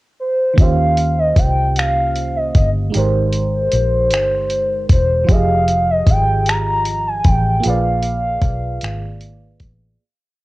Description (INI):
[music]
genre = slow six-eight R&B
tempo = 51 BPM (dotted quarters)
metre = 6/8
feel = straight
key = unclear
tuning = A4 = 440 Hz
[part]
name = gliding portamento lead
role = melody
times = 0.2-9.6 s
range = C5 to Bb5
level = -18 LUFS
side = equal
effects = chorus, cassette tape
[part]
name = FM electric piano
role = accompaniment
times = 0.5-10.0 s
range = Eb3 to Eb5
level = -24 LUFS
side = right 6 dB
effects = chorus, cassette tape
[part]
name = vintage muted fingered electric bass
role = bass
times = 0.6-10.0 s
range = E1 to Eb2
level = -19 LUFS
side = equal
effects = tube saturation
[part]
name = dusty soul sampler-style drum kit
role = drums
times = 0.6-9.8 s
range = finger snaps, hi-hat, kick drum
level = -15 LUFS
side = equal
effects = cassette tape
[sound]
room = light reverb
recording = home recording on cassette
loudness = -14 LUFS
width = side -19 dB against mid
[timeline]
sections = 0.0-0.6 pickup bar; 0.6-10.0 verse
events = fade-out 7.6-10.0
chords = 0.0 N.C.; 0.6 Eb13; 2.9 Abmaj9; 5.3 Fm9; 7.6 Bb7b9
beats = | 0.58 1.76 | 2.93 4.11 | 5.29 6.46 | 7.64 8.81